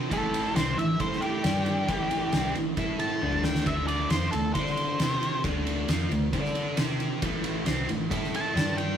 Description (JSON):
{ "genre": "blues rock power trio and southern rock", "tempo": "135 BPM", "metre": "4/4", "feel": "straight", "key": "unclear", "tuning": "A4 = 436 Hz", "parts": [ { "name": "overdriven electric guitar", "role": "riff", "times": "0.0-9.0 s", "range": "A2 to D5", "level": "-29 LUFS", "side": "equal", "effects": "spring reverb" }, { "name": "vintage muted fingered electric bass", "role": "bass", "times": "0.0-9.0 s", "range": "A1 to D3", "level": "-34 LUFS", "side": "left 1 dB", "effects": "none" }, { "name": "octave-fuzz lead guitar", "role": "melody", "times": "0.1-5.4, 8.4-9.0 s", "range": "G4 to A5", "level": "-30 LUFS", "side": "equal", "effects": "distortion" }, { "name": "oversized low-tuned drum kit", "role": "drums", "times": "0.1-8.9 s", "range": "kick drum, ride cymbal, snare drum, toms", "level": "-29 LUFS", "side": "right 1 dB", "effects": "none" } ], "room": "moderate studio reverb, RT60 0.6 s", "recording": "rough rehearsal-room recording", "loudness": "-25 LUFS", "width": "side -9 dB against mid", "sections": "0.0-9.0 A section", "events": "drum fill 3.2-3.7", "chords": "0.1 A5; 1.4 G5; 1.9 A5; 3.2 D5; 5.0 C5; 5.4 D5; 6.8 C5; 7.2 A5", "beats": "| 0.11 0.55 1.00 1.44 | 1.89 2.33 2.78 3.22 | 3.67 4.11 4.55 5.00 | 5.44 5.89 6.33 6.77 | 7.22 7.66 8.11 8.55" }